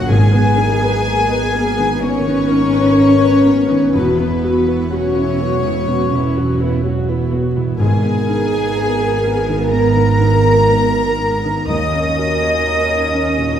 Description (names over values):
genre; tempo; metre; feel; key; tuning
cinematic; 62 BPM; 4/4; rubato; G# minor; A4 = 441 Hz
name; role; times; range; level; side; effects
warm symphonic violin section; melody; 0.0-13.6 s; B4 to D#6; -25 LUFS; left 4 dB; none
warm symphonic violin section; second line; 0.0-13.6 s; B4 to D#6; -23 LUFS; left 4 dB; none
felt-muted upright piano; accompaniment; 0.0-13.6 s; D#2 to C#5; -21 LUFS; left 1 dB; none
warm chamber viola section; accompaniment; 0.0-13.6 s; F#3 to B4; -20 LUFS; right 1 dB; none
concert harp; arpeggios; 0.0-13.6 s; E2 to A#5; -27 LUFS; left 3 dB; none
dark chamber cello section; bass; 0.0-13.6 s; B3 to D#5; -18 LUFS; equal; none
warm symphonic double bass section; bass; 0.0-13.6 s; E1 to D#2; -20 LUFS; right 3 dB; none
timpani; percussion; 0.1-1.5, 7.8-9.2 s; G#2; -18 LUFS; equal; none
room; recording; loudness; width
wet recital hall reverb, RT60 1.5 s; heard from further back in the room; -13 LUFS; side -9 dB against mid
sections
0.0-13.6 A section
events
none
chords
0.1 G#madd9; 3.9 Esus2; 7.8 G#madd9; 11.7 D#m7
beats
| 0.09 1.06 2.02 2.98 | 3.95 4.91 5.87 6.83 | 7.79 8.75 9.71 10.68 | 11.69 12.65